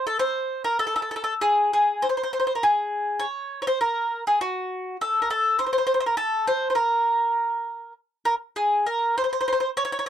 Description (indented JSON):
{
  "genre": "italian folk",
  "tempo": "100 BPM",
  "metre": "3/4",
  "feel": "straight",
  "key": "Bb minor",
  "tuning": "A4 = 440 Hz",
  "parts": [
    { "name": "bowl-back mandolin", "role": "solo", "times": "0.0-10.1 s", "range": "Gb4 to Db5", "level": "-21 LUFS", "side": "equal", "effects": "none" }
  ],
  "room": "little or no reverb",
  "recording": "dry, close 1970s-style studio recording",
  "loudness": "-21 LUFS",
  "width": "side -10 dB against mid",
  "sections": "0.0-8.6 A section; 8.6-10.1 B section",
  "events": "none",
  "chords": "none"
}